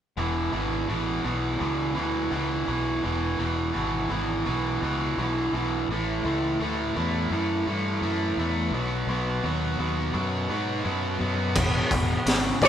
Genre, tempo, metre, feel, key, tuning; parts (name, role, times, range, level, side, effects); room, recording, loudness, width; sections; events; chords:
blues rock power trio and southern rock; 84 BPM; 4/4; straight; E major; A4 = 440 Hz
biting overdriven guitar; riff; 0.2-12.7 s; E2 to B3; -26 LUFS; right 1 dB
growling fingered electric bass; bass; 0.2-12.7 s; E1 to G#2; -30 LUFS; left 1 dB; overdrive
raw garage drum kit; drums; 11.6-12.7 s; crash cymbal, hi-hat, kick drum, snare drum; -23 LUFS; equal
octave-fuzz lead guitar; melody; 12.6-12.7 s; E5; -16 LUFS; left 4 dB; distortion
dark smooth lead guitar; second line; 12.7 s; C#5; -16 LUFS; right 3 dB; overdrive
moderate large studio reverb, RT60 1.0 s; band playing live in one room; -24 LUFS; side -9 dB against mid
0.2-11.6 A section; 11.6-12.7 B section
0.2 E; 5.9 A5; 8.7 B; 11.6 E